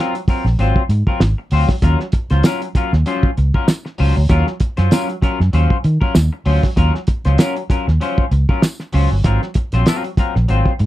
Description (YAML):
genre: funk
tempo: 97 BPM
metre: 4/4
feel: swing 56% on 16ths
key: Eb dorian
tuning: A4 = 440 Hz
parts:
  - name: clean electric guitar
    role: accompaniment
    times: 0.0-10.8 s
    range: Gb3 to C5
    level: -21 LUFS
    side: left 3 dB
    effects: wide subtle chorus
  - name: cloth-damped thuddy drum kit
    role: drums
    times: 0.2-10.9 s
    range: hi-hat, kick drum, snare drum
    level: -16 LUFS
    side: equal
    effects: none
  - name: vintage muted fingered electric bass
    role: bass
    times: 0.3-10.9 s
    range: G1 to Eb3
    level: -14 LUFS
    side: equal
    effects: none
  - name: tambourine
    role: percussion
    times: 2.4-10.0 s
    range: none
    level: -32 LUFS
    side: equal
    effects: none
room: little or no reverb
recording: dry, close 1970s-style studio recording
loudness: -14 LUFS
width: side -15 dB against mid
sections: 0.0-10.9 A section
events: none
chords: 0.0 Ab13; 1.8 Ebm9; 9.2 Ab13